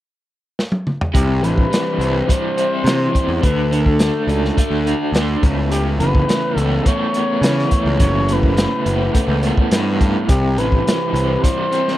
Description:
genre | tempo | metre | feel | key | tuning
psychedelic rock | 105 BPM | 4/4 | straight | unclear | A4 = 445 Hz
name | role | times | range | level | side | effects
crunchy breakbeat drum kit | drums | 0.6-11.9 s | hi-hat, kick drum, snare drum, toms | -18 LUFS | equal | none
expressive synth lead | melody | 1.1-12.0 s | G4 to C#5 | -22 LUFS | left 2 dB | chorus, slapback echo
mellow tonewheel organ | sustained chords | 1.1-12.0 s | G3 to A4 | -28 LUFS | right 4 dB | none
crunchy overdriven guitar | riff | 1.1-12.0 s | C3 to D4 | -20 LUFS | equal | tremolo
fuzz picked electric bass | bass | 1.1-11.4 s | F#1 to C#3 | -19 LUFS | equal | overdrive
room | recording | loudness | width
little or no reverb | dry, close 1970s-style studio recording | -15 LUFS | side -14 dB against mid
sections
0.0-1.1 A section; 1.1-12.0 B section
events
drum fill 0.6-1.1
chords
0.0 N.C.; 1.1 C; 3.4 D; 5.4 Aadd9; 10.3 C

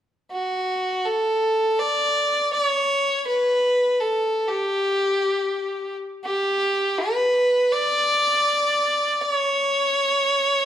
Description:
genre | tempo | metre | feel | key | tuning
hawaiian | free time | none | none | D major | A4 = 443 Hz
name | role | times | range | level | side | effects
rich fiddle | solo | 0.3-10.7 s | F#4 to D5 | -19 LUFS | equal | none
room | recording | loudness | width
moderate recital hall reverb, RT60 1.6 s | none | -19 LUFS | side -10 dB against mid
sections
0.3-10.7 A section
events
none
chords
none

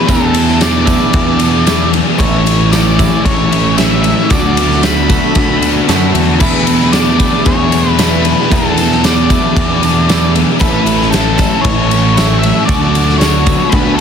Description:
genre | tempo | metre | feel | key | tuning
rock, shoegaze and dream pop | 114 BPM | 4/4 | straight | E mixolydian | A4 = 440 Hz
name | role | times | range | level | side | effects
octave-fuzz lead guitar | melody | 0.0-14.0 s | A4 to B5 | -18 LUFS | left 2 dB | distortion, digital delay
twelve-string electric guitar | arpeggios | 0.0-14.0 s | E3 to A4 | -21 LUFS | right 7 dB | wide subtle chorus, digital delay
overdriven electric guitar | riff | 0.0-14.0 s | A2 to A4 | -17 LUFS | left 11 dB | analog chorus
twelve-string electric guitar | riff | 0.0-14.0 s | E2 to F#4 | -18 LUFS | right 11 dB | reverse reverb
fuzz picked electric bass | bass | 0.1-14.0 s | A1 to F#2 | -15 LUFS | equal | overdrive
big rock drum kit | drums | 0.1-13.8 s | crash cymbal, kick drum, ride cymbal, snare drum | -14 LUFS | equal | soft clipping on kick
tambourine | percussion | 0.1-13.8 s | none | -31 LUFS | right 9 dB | none
room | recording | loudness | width
light reverb, small room ambience | dense, heavily limited modern master | -9 LUFS | side -7 dB against mid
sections
0.0-14.0 A section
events
none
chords
0.0 E7sus4; 2.2 Amaj7; 4.3 D6; 6.4 E7sus4; 10.6 A; 12.7 D6

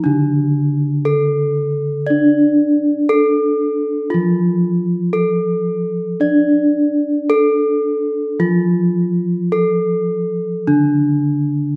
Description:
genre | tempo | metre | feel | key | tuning
gamelan | 50-59 BPM | 4/4 | straight | unclear | A4 = 440 Hz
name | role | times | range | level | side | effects
gamelan-type bronze metallophone | melody | 0.0-11.8 s | D4 to D5 | -20 LUFS | equal | none
gamelan-type bronze metallophone | accompaniment | 0.0-11.8 s | D3 to D4 | -19 LUFS | equal | none
room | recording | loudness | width
wet recital hall reverb, RT60 1.7 s | none | -16 LUFS | mono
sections
0.0-11.8 A section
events
none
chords
none

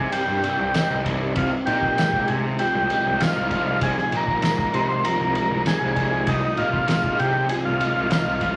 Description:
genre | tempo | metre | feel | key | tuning
psychedelic rock | 98 BPM | 4/4 | straight | unclear | A4 = 440 Hz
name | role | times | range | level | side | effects
overdriven combo organ | melody | 0.0-8.6 s | Eb4 to C5 | -25 LUFS | equal | none
crunchy overdriven guitar | riff | 0.0-8.6 s | C3 to Eb4 | -28 LUFS | equal | rotary speaker
fuzz picked electric bass | bass | 0.0-8.6 s | C2 to C3 | -31 LUFS | equal | overdrive
swarming drone | drone | 0.1-8.6 s | C2 to G2 | -37 LUFS | equal | none
cloth-damped thuddy drum kit | drums | 0.1-8.6 s | kick drum, ride cymbal, snare drum | -30 LUFS | equal | none
tambourine | percussion | 0.7-8.3 s | none | -47 LUFS | equal | none
room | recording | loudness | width
moderate large studio reverb, RT60 0.9 s | none | -22 LUFS | mono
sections
0.0-8.6 A section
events
none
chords
0.0 Cm; 1.4 Fm7/C

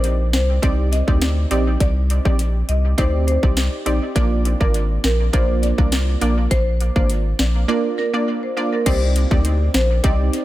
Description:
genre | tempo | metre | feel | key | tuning
dancehall | 102 BPM | 4/4 | straight | C minor | A4 = 441 Hz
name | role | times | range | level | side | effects
marimba with medium hard mallets | melody | 0.0-10.2 s | Bb4 to Eb5 | -26 LUFS | equal | dub echo
saturated sub bass | bass | 0.0-10.3 s | Ab1 to D2 | -18 LUFS | equal | none
island pop drum kit | drums | 0.0-10.4 s | crash cymbal, hi-hat, kick drum, snare drum | -20 LUFS | equal | none
analog pluck | accompaniment | 0.6-10.4 s | Bb3 to D5 | -23 LUFS | right 2 dB | chorus, sidechain pumping, dub echo
room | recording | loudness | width
light reverb | echo-heavy mix | -16 LUFS | side -15 dB against mid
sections
0.0-8.9 A section; 8.9-10.4 B section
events
none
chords
0.0 Cmadd9; 4.2 Bb; 8.9 Cmadd9

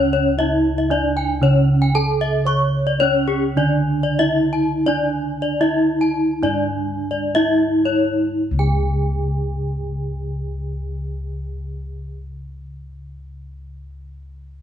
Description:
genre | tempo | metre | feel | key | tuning
Balinese gamelan | 54-116 BPM | 4/4 | straight | C# pelog | A4 = 440 Hz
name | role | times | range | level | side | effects
gamelan-type bronze metallophone | melody | 0.0-12.2 s | C#4 to C#5 | -21 LUFS | right 2 dB | none
gamelan-type bossed gongs | bass | 0.0-12.1 s | C#2 to C#5 | -23 LUFS | equal | none
gamelan-type bronze metallophone | arpeggios | 0.1-12.2 s | G#4-45c to C#6 | -22 LUFS | left 4 dB | none
room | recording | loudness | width
moderate stone room reverb, RT60 1.3 s | band playing live in one room, nothing above 10.3 kHz | -17 LUFS | side -9 dB against mid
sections
0.0-8.4 A section; 8.4-12.8 B section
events
slowing down 2.5-8.4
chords
none

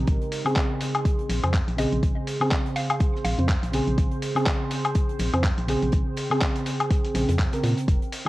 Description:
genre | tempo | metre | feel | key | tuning
deep house | 123 BPM | 4/4 | swing 57% on 16ths | unclear | A4 = 438 Hz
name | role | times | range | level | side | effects
deep dark ambient pad | sustained chords | 0.0-8.3 s | Ab3 to G5 | -41 LUFS | right 2 dB | chorus, built-in reverb, sidechain pumping
mellow FM electric piano | stabs | 0.0-8.3 s | Db3 to C5 | -27 LUFS | right 1 dB | chorus, sidechain pumping, tape echo
organ-like FM bass | bass | 0.0-8.0 s | F1 to Bb2 | -25 LUFS | equal | sidechain pumping
damped 70s drum kit | drums | 0.1-8.3 s | hi-hat, snare drum | -46 LUFS | right 2 dB | sidechain pumping on hats, high-pass filter on hats, high-pass filter on snare, high-pass filter on room
dusty soul sampler-style drum kit | drums | 0.1-8.3 s | handclaps, hi-hat, woodblock | -29 LUFS | left 2 dB | overdrive
electronic kick drum | drums | 0.1-8.0 s | none | -24 LUFS | equal | none
mallet-like synth pluck | melody | 1.8-3.9 s | Eb5 to F5 | -33 LUFS | equal | chorus, phaser, tape echo
room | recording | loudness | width
little or no reverb | cassette tape | -22 LUFS | side -18 dB against mid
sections
0.0-8.3 A section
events
none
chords
0.0 Bbm9

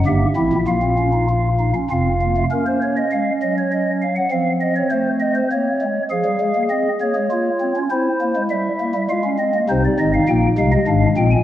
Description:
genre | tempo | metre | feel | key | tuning
classical, baroque-style 4-part fugue for pipe organ | 100 BPM | 3/4 | straight | Bb minor, F minor from 6.1 s | A4 = 440 Hz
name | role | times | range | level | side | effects
pipe organ, stopped flute | solo | 0.0-11.4 s | F1 to Ab5 | -16 LUFS | equal | none
room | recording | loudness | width
wet concert hall reverb, RT60 1.9 s | worn, warbling old tape, cassette tape, warbly pitch drift, nothing above 10.9 kHz | -16 LUFS | side -12 dB against mid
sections
0.0-2.5 A section; 2.5-6.1 B section; 6.1-11.4 C section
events
none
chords
0.1 Edim/G; 0.7 Fsus4/Bb; 1.9 F; 2.5 Bbm; 3.7 Ebm/Gb; 4.3 F7; 5.5 Bbm; 6.1 Fm; 7.3 Bbm; 7.9 C7; 9.1 Fm/Ab; 9.7 Cm; 10.9 Fm/Ab

